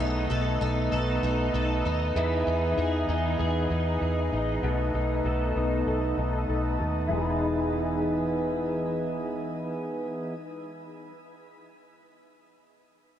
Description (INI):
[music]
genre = dream pop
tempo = 97 BPM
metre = 4/4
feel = straight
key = E major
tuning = A4 = 440 Hz
[part]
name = pedal harmonium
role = sustained chords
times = 0.0-10.3 s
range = E3 to G#4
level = -30 LUFS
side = right 1 dB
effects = low-pass filter
[part]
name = picked twelve-string acoustic guitar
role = arpeggios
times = 0.0-11.1 s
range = B2 to A4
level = -30 LUFS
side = left 2 dB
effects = ensemble chorus, low-pass filter, tape echo
[part]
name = vintage muted fingered electric bass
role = bass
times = 0.0-11.0 s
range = E1 to E2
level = -29 LUFS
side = equal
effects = none
[sound]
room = moderate shimmer reverb, RT60 5.8 s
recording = none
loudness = -25 LUFS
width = side -10 dB against mid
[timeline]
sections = 0.0-7.1 A section; 7.1-9.6 B section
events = filter sweep 0.0-7.1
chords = 0.0 B7; 2.2 Emaj7; 4.6 B7; 7.1 Emaj7